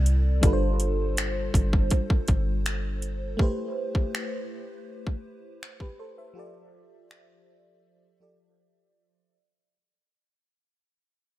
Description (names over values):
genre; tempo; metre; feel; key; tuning
contemporary R&B; 81 BPM; 4/4; straight; unclear; A4 = 445 Hz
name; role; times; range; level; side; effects
FM electric piano with soft pad layer; accompaniment; 0.0-9.3 s; C3 to E5; -32 LUFS; equal; chorus, phaser, analog delay
soft 808-style bass; bass; 0.0-3.4 s; G1 to C2; -25 LUFS; equal; none
trap drum kit; drums; 0.1-7.3 s; finger snaps, hi-hat, kick drum; -24 LUFS; equal; overdrive
room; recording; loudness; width
little or no reverb; echo-heavy mix; -24 LUFS; side -15 dB against mid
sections
0.0-9.3 A section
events
fade-out 0.0-9.3; break 8.6-9.3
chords
0.4 G7sus4; 3.4 Am9; 6.4 F69